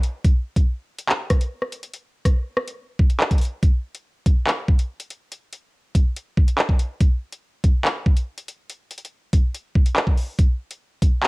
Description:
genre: hip hop.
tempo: 142 BPM.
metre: 4/4.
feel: half-time.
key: none.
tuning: none.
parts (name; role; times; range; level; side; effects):
drill drum kit; drums; 0.0-11.3 s; handclaps, hi-hat, kick drum, rim click; -18 LUFS; equal; cassette tape.
room: little or no reverb.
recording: home recording on cassette.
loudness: -19 LUFS.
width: side -25 dB against mid.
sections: 0.0-3.6 A section; 3.6-11.3 B section.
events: none.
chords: none.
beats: | 0.25 0.67 1.09 1.51 | 1.94 2.36 2.78 3.20 | 3.63 4.05 4.47 4.89 | 5.32 5.74 6.16 6.58 | 7.01 7.43 7.85 8.27 | 8.70 9.12 9.54 9.96 | 10.39 10.81 11.23.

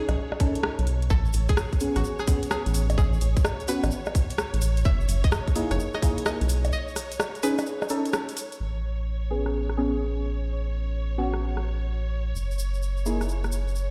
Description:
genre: UK garage, two-step garage.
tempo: 128 BPM.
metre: 4/4.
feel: swing 66% on 16ths.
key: A lydian.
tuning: A4 = 443 Hz.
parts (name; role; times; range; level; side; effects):
string-like resonator pluck; melody; 0.0-8.5 s; F#4 to E5; -39 LUFS; equal; chorus, phaser, tape echo.
warm studio violin section; sustained chords; 0.0-13.9 s; C#5; -42 LUFS; equal; sidechain pumping.
deep mellow chord stab; stabs; 0.0-13.2 s; A#3 to A4; -32 LUFS; equal; chorus, cassette tape, dub echo.
rubbery square bass; bass; 0.1-13.9 s; F#1 to B1; -28 LUFS; equal; none.
garage drum kit; drums; 0.1-13.5 s; bongos, hi-hat, rim click; -33 LUFS; equal; low-pass filter on hats, low-pass filter on snare, low-pass filter on perc.
electronic kick drum; drums; 0.4-6.1 s; none; -24 LUFS; equal; none.
tube shaker; percussion; 1.1-8.6, 12.4-13.9 s; none; -42 LUFS; equal; none.
room: light reverb.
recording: played on a big sound system in a bare room, stone room reverb.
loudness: -26 LUFS.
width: mono.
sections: 0.0-8.6 A section; 8.6-13.9 B section.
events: break 6.7-8.6.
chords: 0.0 B7; 1.1 Amaj9; 4.9 F#13; 6.5 B; 8.6 Amaj9; 12.4 F#13.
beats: 0.17 0.63 | 1.10 1.57 2.04 2.51 | 2.98 3.45 3.92 4.38 | 4.85 5.32 5.79 6.26 | 6.73 7.20 7.67 8.13 | 8.60 9.07 9.54 10.01 | 10.48 10.95 11.42 11.88 | 12.35 12.82 13.29 13.76.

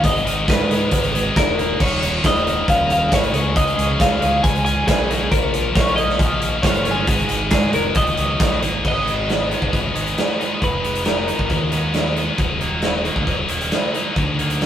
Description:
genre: indie rock.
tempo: 136 BPM.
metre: 4/4.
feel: straight.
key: Eb minor.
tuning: A4 = 440 Hz.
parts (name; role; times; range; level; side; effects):
twelve-string electric guitar; melody; 0.0-12.1 s; Ab4 to Ab5; -22 LUFS; left 1 dB; none.
high-gain distorted guitar; riff; 0.0-14.7 s; Eb2 to Ab4; -22 LUFS; left 3 dB; distortion.
sludgy distorted guitar; riff; 0.0-14.7 s; Eb2 to Ab4; -30 LUFS; right 4 dB; overdrive.
growling fingered electric bass; bass; 0.0-14.7 s; Eb1 to Ab2; -24 LUFS; equal; overdrive.
big rock drum kit; drums; 0.0-14.7 s; crash cymbal, hi-hat, kick drum, snare drum; -20 LUFS; right 1 dB; none.
room: moderate studio reverb, RT60 0.6 s.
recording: rough rehearsal-room recording.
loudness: -16 LUFS.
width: side -10 dB against mid.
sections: 0.0-8.8 A section; 8.8-14.7 B section.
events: none.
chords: 0.0 Abmadd9; 1.8 Eb5; 3.3 Dbadd9; 5.3 Bbm; 7.1 Absus2; 8.0 Ebm7; 8.8 Abm; 12.4 Ebm.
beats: | 0.04 0.48 0.92 1.36 | 1.80 2.24 2.68 3.12 | 3.56 4.00 4.44 4.88 | 5.32 5.76 6.20 6.64 | 7.08 7.52 7.96 8.40 | 8.84 9.28 9.73 10.17 | 10.61 11.06 11.50 11.95 | 12.39 12.84 13.28 13.72 | 14.17 14.62.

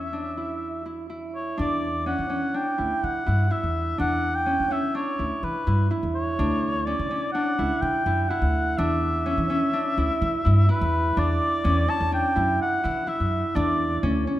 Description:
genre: contemporary instrumental, chamber music in an uneven meter.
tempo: 125 BPM.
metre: 5/4.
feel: straight.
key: E dorian.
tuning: A4 = 441 Hz.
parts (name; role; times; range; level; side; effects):
warm oboe; melody; 0.0-14.0 s; B4 to A5; -26 LUFS; left 1 dB; none.
Celtic harp; arpeggios; 0.0-14.4 s; C#4 to E4; -27 LUFS; right 1 dB; none.
upright bass; bass; 0.0-14.2 s; C#2 to E3; -25 LUFS; equal; none.
room: moderate scoring stage reverb, RT60 1.7 s.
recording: none.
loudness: -22 LUFS.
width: side -14 dB against mid.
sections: 0.0-1.6 A section; 1.6-11.2 B section; 11.2-14.4 C section.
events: none.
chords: 0.0 N.C.; 1.6 E7(no3); 6.4 Dmaj7; 8.8 E7(no3); 11.2 N.C..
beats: 0.14 0.62 1.10 | 1.58 2.06 2.55 3.03 3.51 | 3.99 4.47 4.95 5.43 5.91 | 6.39 6.87 7.34 7.82 8.30 | 8.78 9.26 9.74 10.21 10.69 | 11.17 11.65 12.12 12.60 13.08 | 13.56 14.03.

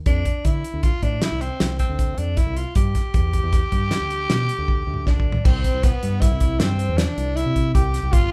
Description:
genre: progressive instrumental, band music in an uneven meter.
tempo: 156 BPM.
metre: 7/4.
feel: straight.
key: unclear.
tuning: A4 = 438 Hz.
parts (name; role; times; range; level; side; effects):
raspy tenor saxophone; melody; 0.1-8.3 s; B3 to G4; -29 LUFS; equal; none.
fingered electric bass; bass; 0.1-8.3 s; G1 to D3; -27 LUFS; equal; none.
damped 70s drum kit; drums; 0.1-8.2 s; crash cymbal, hi-hat, kick drum, snare drum, toms; -22 LUFS; equal; none.
clear alto saxophone; second line; 5.1-8.3 s; B3 to G4; -34 LUFS; equal; none.
room: moderate large studio reverb, RT60 0.8 s.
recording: band playing live in one room.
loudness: -21 LUFS.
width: mono.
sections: 0.0-5.5 A section; 5.5-8.3 B section.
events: drum fill 4.7-5.5.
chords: 0.1 F5; 2.8 G5; 5.5 C.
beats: | 0.06 0.45 0.83 1.22 1.60 1.99 2.37 | 2.76 3.14 3.53 3.91 4.30 4.68 5.07 | 5.45 5.83 6.22 6.60 6.98 7.37 7.75 | 8.13.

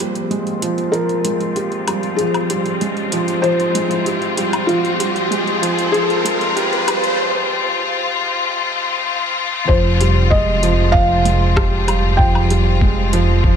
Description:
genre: piano and strings electronica.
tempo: 96 BPM.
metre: 4/4.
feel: straight.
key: F minor.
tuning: A4 = 439 Hz.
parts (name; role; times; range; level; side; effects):
felt-muted upright piano; melody; 0.0-13.6 s; F4 to G5; -21 LUFS; left 2 dB; digital delay.
clear studio string section; sustained chords; 0.0-13.6 s; F3 to F4; -21 LUFS; left 5 dB; low-pass filter.
felt-muted upright piano; riff; 0.0-13.6 s; F3 to G4; -21 LUFS; right 3 dB; digital delay.
deep house drum kit; drums; 0.0-13.3 s; hi-hat, rim click, woodblock; -25 LUFS; left 1 dB; overdrive, high-pass filter on hats, small room reverb, high-pass filter on perc, high-pass filter on snare.
riser; sound effects; 0.0-7.2 s; none; -24 LUFS; right 2 dB; none.
dark detuned saw bass; bass; 9.7-13.6 s; F1; -16 LUFS; equal; sidechain pumping.
electronic kick drum; drums; 9.7-13.6 s; none; -16 LUFS; equal; small room reverb.
room: moderate echo chamber reverb, RT60 2.3 s.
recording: high-pass filter.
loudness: -15 LUFS.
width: side -8 dB against mid.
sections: 0.0-9.7 A section; 9.7-13.6 B section.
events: build-up 0.0-9.7; riser 0.0-7.2; filter sweep on string section 0.0-9.7; filter sweep 0.0-9.7; break 7.2-9.7; drop 9.7-13.6.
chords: 0.0 Fmadd9.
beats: 0.32 0.94 1.57 | 2.19 2.82 3.44 4.07 | 4.69 5.32 5.94 6.57 | 7.19 7.82 8.44 9.07 | 9.69 10.32 10.94 11.57 | 12.19 12.82 13.44.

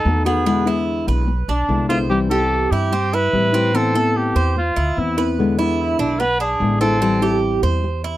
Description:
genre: latin.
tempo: 146 BPM.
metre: 4/4.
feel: straight.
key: A minor.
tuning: A4 = 437 Hz.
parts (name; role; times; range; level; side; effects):
warm trumpet; melody; 0.0-7.4 s; D4 to B4; -21 LUFS; equal; none.
nylon-string guitar; accompaniment; 0.0-7.9 s; B2 to F#4; -20 LUFS; left 3 dB; none.
Cuban tres; arpeggios; 0.0-8.2 s; B3 to C5; -23 LUFS; right 5 dB; none.
upright bass; bass; 0.1-8.2 s; A1 to A2; -22 LUFS; equal; none.
room: little or no reverb.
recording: dry, close 1970s-style studio recording.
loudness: -16 LUFS.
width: side -15 dB against mid.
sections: 0.0-8.2 A section.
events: none.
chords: 0.5 E7; 2.1 C; 3.7 Amadd9; 5.4 E7; 7.0 Am7.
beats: 0.06 | 0.47 0.88 1.29 1.70 | 2.10 2.52 2.92 3.33 | 3.75 4.15 4.56 4.97 | 5.38 5.79 6.20 6.61 | 7.02 7.43 7.84.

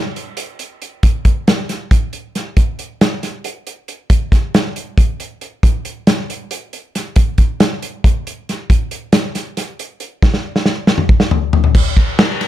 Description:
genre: rock.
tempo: 274 BPM (eighths).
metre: 7/8.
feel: straight.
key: none.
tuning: none.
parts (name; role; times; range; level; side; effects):
loose indie drum kit; drums; 0.2-12.5 s; crash cymbal, hi-hat, kick drum, ride cymbal, snare drum, toms; -13 LUFS; equal; none.
room: little or no reverb.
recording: none.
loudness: -13 LUFS.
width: side -13 dB against mid.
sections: 0.0-11.8 A section.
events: drum fill 10.2-11.8.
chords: none.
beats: 0.16 0.38 0.60 0.82 | 1.04 1.26 1.48 1.69 1.91 2.13 2.35 | 2.57 2.79 3.01 3.23 3.45 3.67 3.89 | 4.11 4.32 4.54 4.76 4.98 5.20 5.42 | 5.64 5.86 6.08 6.29 6.51 6.73 6.95 | 7.17 7.39 7.61 7.83 8.04 8.26 8.48 | 8.70 8.92 9.14 9.36 9.57 9.79 10.01 | 10.23 10.45 10.67 10.88 11.10 11.32 11.54 | 11.76 11.97 12.19 12.41.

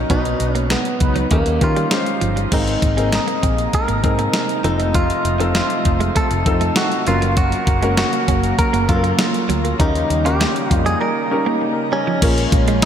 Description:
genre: 1980s-style pop.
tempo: 99 BPM.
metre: 4/4.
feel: straight.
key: unclear.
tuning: A4 = 440 Hz.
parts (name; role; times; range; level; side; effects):
warm concert grand piano; accompaniment; 0.0-12.9 s; Ab2 to C5; -23 LUFS; left 2 dB; shimmer reverb.
direct-recorded clean electric guitar; riff; 0.0-12.9 s; F3 to Eb4; -27 LUFS; right 5 dB; analog chorus, shimmer reverb.
vintage muted fingered electric bass; bass; 0.0-12.9 s; F1 to Eb3; -21 LUFS; equal; none.
direct-recorded clean electric guitar; melody; 0.1-12.9 s; Bb3 to Bb4; -21 LUFS; right 1 dB; spring reverb, shimmer reverb, ping-pong delay.
mellow synth brass; stabs; 0.1-1.3 s; F#3 to B4; -29 LUFS; left 1 dB; none.
clean 12-bit digital drum machine; drums; 0.1-12.9 s; crash cymbal, hi-hat, kick drum, snare drum, tambourine; -20 LUFS; equal; gated reverb.
lush unison pad; sustained chords; 2.5-12.9 s; C3 to Bb4; -25 LUFS; equal; chorus, shimmer reverb.
room: moderate plate reverb, RT60 2.3 s.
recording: bright 1980s-style digital production.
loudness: -15 LUFS.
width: side -9 dB against mid.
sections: 0.0-2.5 A section; 2.5-12.2 B section.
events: band accent 0.1-2.5; break 11.0-12.2.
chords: 0.1 B; 1.3 Eb7; 2.5 Abadd9; 4.6 F7; 7.1 Gb; 9.8 Eb7; 12.2 Bbm7.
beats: | 0.10 0.70 1.31 1.92 | 2.52 3.13 3.73 4.34 | 4.95 5.55 6.16 6.76 | 7.37 7.98 8.58 9.19 | 9.80 10.40 11.01 11.61 | 12.22 12.83.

